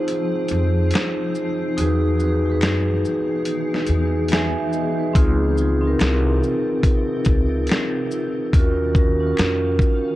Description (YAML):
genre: lo-fi hip hop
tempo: 71 BPM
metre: 4/4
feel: swing 62% on 16ths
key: unclear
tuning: A4 = 442 Hz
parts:
  - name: vibraphone with medium mallets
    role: accompaniment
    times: 0.0-10.2 s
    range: C4 to G#5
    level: -22 LUFS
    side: equal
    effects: low-pass filter
  - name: granular cloud pad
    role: sustained chords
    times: 0.0-10.2 s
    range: C3 to F5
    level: -28 LUFS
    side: left 1 dB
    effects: built-in reverb, low-pass filter
  - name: dusty soul sampler-style drum kit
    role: drums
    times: 0.1-10.1 s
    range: hi-hat, kick drum, shaker, snare drum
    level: -20 LUFS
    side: equal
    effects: none
  - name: upright bass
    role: bass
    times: 0.5-9.8 s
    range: C2 to Gb2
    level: -21 LUFS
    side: equal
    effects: none
  - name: finger snaps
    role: percussion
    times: 0.9-9.6 s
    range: none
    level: -34 LUFS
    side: left 3 dB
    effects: none
room: small room ambience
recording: cassette tape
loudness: -17 LUFS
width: side -16 dB against mid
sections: 0.0-10.2 A section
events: break 0.0-5.2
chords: 0.0 Fm7; 1.8 Emaj7; 5.2 Dbmaj9; 8.5 Ebm9